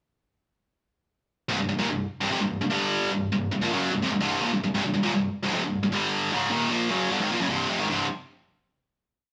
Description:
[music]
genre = metal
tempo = 151 BPM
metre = 4/4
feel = straight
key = unclear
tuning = A4 = 440 Hz
[part]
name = tight distorted guitar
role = solo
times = 1.5-8.1 s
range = C2 to Bb3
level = -26 LUFS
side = equal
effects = distortion
[sound]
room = moderate studio reverb, RT60 0.9 s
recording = band playing live in one room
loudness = -26 LUFS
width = mono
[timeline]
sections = 1.5-7.9 riff; 7.9-9.3 final chord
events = none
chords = 1.5 C5; 2.7 G5; 3.1 C5; 5.9 G5; 6.3 Cm; 7.9 C5

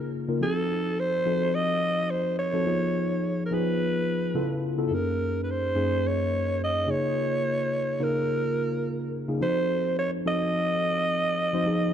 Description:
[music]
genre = pop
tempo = 107 BPM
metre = 4/4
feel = swing 54% on 16ths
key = unclear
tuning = A4 = 439 Hz
[part]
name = breathy alto saxophone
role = melody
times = 0.0-11.9 s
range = A4 to Eb5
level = -27 LUFS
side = right 2 dB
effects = none
[part]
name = mellow tine electric piano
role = accompaniment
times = 0.0-11.9 s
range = Gb2 to C5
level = -27 LUFS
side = left 1 dB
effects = wide subtle chorus
[sound]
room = light reverb, small room ambience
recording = dark, warm production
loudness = -24 LUFS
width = side -9 dB against mid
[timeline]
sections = 0.0-11.9 A section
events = none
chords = 0.4 F7b9; 2.7 Db7/F; 4.4 Db7alt; 4.9 Gb69; 6.9 Db69; 9.4 F7b9

